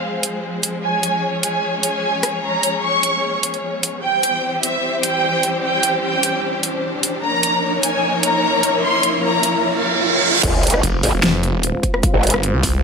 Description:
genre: heavy wobble dubstep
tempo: 150 BPM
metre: 4/4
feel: half-time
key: F harmonic minor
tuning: A4 = 441 Hz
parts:
  - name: warm studio violin section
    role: melody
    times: 0.0-9.6 s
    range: E5 to Db6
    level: -20 LUFS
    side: equal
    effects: low-pass filter, ping-pong delay
  - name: dark symphonic string section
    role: sustained chords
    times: 0.0-12.8 s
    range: E3 to F5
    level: -22 LUFS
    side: left 2 dB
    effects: sidechain pumping, low-pass filter
  - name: riser, reverse cymbal and sub drop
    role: sound effects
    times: 1.7-12.0 s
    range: none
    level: -23 LUFS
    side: right 2 dB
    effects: none
  - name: big-room dance drum kit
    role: drums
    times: 0.2-12.7 s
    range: crash cymbal, hi-hat, rim click, snare drum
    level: -19 LUFS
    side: equal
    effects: overdrive
  - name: growl bass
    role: bass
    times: 10.4-12.3 s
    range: F1 to Ab1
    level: -16 LUFS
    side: equal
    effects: distortion, chorus, overdrive
  - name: electronic kick drum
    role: drums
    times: 10.4-12.7 s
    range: none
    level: -19 LUFS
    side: equal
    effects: overdrive
  - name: snarling distorted saw bass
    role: bass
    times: 10.8-12.8 s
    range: F1 to C2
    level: -18 LUFS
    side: equal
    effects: distortion, overdrive
room: moderate plate reverb, RT60 1.9 s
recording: none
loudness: -16 LUFS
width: side -5 dB against mid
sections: 0.0-10.4 A section; 10.4-12.8 B section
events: build-up 0.0-10.4; riser 1.7-10.4; reverse cymbal 9.6-10.4; drop 10.4-12.8; impact 10.4-12.0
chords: 0.0 Fm; 0.8 Db; 4.0 C; 7.2 Bbm; 10.4 Fm

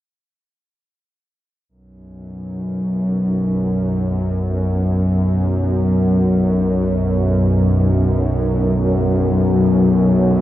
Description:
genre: ambient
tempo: free time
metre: none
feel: none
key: unclear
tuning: A4 = 442 Hz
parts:
  - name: bowed-like drone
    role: drone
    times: 2.3-10.4 s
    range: B1 to F#2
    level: -15 LUFS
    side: equal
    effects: built-in reverb
room: wet huge ambient reverb, RT60 7.9 s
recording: worn, warbling old tape, cassette tape, warbly pitch drift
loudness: -15 LUFS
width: side -14 dB against mid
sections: 1.7-10.4 A section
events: fade-in on synth drone 1.7-10.4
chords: 1.7 B5

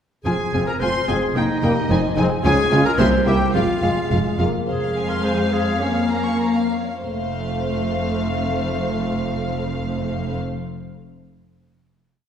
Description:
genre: quick classical-period movement for symphony orchestra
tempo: 93-110 BPM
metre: 2/4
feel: straight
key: unclear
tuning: A4 = 440 Hz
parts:
  - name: warm clarinet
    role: second line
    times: 0.2-10.4 s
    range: A3 to C5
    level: -25 LUFS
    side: left 1 dB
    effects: none
  - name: warm studio violin section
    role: melody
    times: 0.3-10.4 s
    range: E5 to Ab5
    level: -30 LUFS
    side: left 3 dB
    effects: none
  - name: warm studio violin section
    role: second line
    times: 0.3-10.4 s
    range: C5 to Db6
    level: -29 LUFS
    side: left 2 dB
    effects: none
  - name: warm studio viola section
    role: accompaniment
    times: 0.3-10.4 s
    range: Ab3 to G4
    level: -24 LUFS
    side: equal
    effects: none
  - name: clear studio cello section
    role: bass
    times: 0.3-10.4 s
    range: C2 to F2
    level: -25 LUFS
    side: right 1 dB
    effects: none
  - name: rich studio double bass section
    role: bass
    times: 0.3-10.4 s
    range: F1 to Db2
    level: -26 LUFS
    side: right 2 dB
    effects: none
  - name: warm French horn section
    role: sustained chords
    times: 0.5-4.7 s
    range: G3 to F4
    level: -27 LUFS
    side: left 2 dB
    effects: none
room: wet scoring stage reverb, RT60 1.6 s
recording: heard from further back in the room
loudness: -18 LUFS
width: side -8 dB against mid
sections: 0.3-4.7 A section; 4.7-7.0 coda; 7.0-9.6 final chord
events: slowing down 4.1-7.0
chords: 0.3 Fm; 1.4 Eb/F; 1.9 Ab/F; 2.4 Db; 3.0 C7; 3.5 Fm; 5.8 Bbm/F; 7.0 F

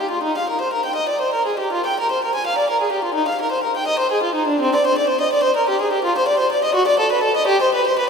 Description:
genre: classical, baroque-style suite movement for unaccompanied violin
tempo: 83 BPM (dotted quarters)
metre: 6/8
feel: rubato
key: Eb major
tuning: A4 = 438 Hz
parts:
  - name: warm violin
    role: solo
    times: 0.0-8.1 s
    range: C4 to Ab5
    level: -16 LUFS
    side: equal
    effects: none
room: wet cathedral reverb, RT60 4.5 s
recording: none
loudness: -16 LUFS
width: side -5 dB against mid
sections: 0.2-8.1 A section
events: none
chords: none

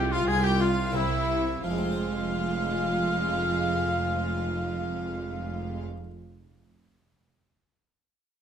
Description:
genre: classical, baroque-style concerto movement with solo episodes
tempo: 86 BPM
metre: 3/4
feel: straight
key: F minor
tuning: A4 = 440 Hz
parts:
  - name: warm oboe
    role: melody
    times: 0.0-5.8 s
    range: E4 to F5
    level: -32 LUFS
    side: equal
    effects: none
  - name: warm chamber violin section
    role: second line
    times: 0.0-5.8 s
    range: E4 to Ab4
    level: -32 LUFS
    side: left 2 dB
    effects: none
  - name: harpsichord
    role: accompaniment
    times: 0.0-6.1 s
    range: C2 to C5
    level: -37 LUFS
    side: equal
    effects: none
  - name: warm studio viola section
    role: accompaniment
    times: 0.0-5.8 s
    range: Ab3 to F4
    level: -35 LUFS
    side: right 1 dB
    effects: none
  - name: rich symphonic cello section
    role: bass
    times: 0.0-5.8 s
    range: C2 to C3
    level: -32 LUFS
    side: right 2 dB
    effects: none
  - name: rich symphonic double bass section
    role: bass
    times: 0.0-5.8 s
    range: F1 to C2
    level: -33 LUFS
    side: right 3 dB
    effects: none
  - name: rich studio violin section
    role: melody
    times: 0.1-5.8 s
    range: E5 to Ab5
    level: -37 LUFS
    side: left 4 dB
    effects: none
room: moderate recital hall reverb, RT60 1.4 s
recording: close, detailed microphones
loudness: -25 LUFS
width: side -8 dB against mid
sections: 0.0-1.6 A section; 1.6-5.8 B section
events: slowing down 0.0-1.6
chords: 0.0 Fm/C; 0.9 C7; 1.6 Fm

